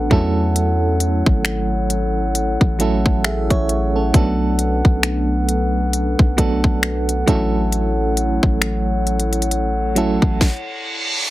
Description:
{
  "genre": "contemporary R&B",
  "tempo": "67 BPM",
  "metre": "4/4",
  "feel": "swing 58% on 16ths",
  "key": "A major",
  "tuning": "A4 = 442 Hz",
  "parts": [
    { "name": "FM electric piano with tremolo", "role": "accompaniment", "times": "0.0-10.4 s", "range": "F#3 to E5", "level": "-21 LUFS", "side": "right 3 dB", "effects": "none" },
    { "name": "glass harmonica", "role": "sustained chords", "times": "0.0-10.4 s", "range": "D4 to F#5", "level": "-25 LUFS", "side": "left 2 dB", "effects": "none" },
    { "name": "warm 808-style bass", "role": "bass", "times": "0.0-10.4 s", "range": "G#1 to E2", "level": "-21 LUFS", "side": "equal", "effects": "none" },
    { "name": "trap drum kit", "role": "drums", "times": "0.1-10.7 s", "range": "finger snaps, hi-hat, kick drum, snare drum", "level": "-16 LUFS", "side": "equal", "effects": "none" },
    { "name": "reverse cymbal", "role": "sound effects", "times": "10.5-11.3 s", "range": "none", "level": "-23 LUFS", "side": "right 2 dB", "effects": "none" }
  ],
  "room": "light reverb",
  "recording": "heavily compressed radio sound",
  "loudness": "-16 LUFS",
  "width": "side -16 dB against mid",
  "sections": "0.0-11.3 A section",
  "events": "stop 10.4-11.3; reverse cymbal 10.5-11.3",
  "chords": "0.1 A6; 4.1 Bm7; 7.3 A6"
}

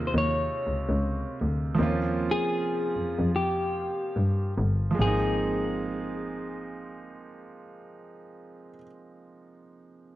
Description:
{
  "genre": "R&B, neo-soul",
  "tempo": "70-82 BPM",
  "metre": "4/4",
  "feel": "swing 58% on 16ths",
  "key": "Ab major",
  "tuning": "A4 = 439 Hz",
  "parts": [
    { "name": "clear baby grand piano", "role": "accompaniment", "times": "0.0-10.2 s", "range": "C3 to F4", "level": "-32 LUFS", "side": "right 3 dB", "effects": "none" },
    { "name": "clear double bass", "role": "bass", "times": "0.0-8.8 s", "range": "G1 to G2", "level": "-27 LUFS", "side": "equal", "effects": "none" },
    { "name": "clean electric guitar", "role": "melody", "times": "0.1-8.8 s", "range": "G4 to Db5", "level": "-30 LUFS", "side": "left 2 dB", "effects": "slapback echo" }
  ],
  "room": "little or no reverb",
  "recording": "dry, close 1970s-style studio recording",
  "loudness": "-25 LUFS",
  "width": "side -15 dB against mid",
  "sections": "0.0-5.0 A section; 5.0-8.4 B section",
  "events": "slowing down 0.0-5.0",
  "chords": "0.0 Db6; 1.8 Eb13; 5.0 Abadd9"
}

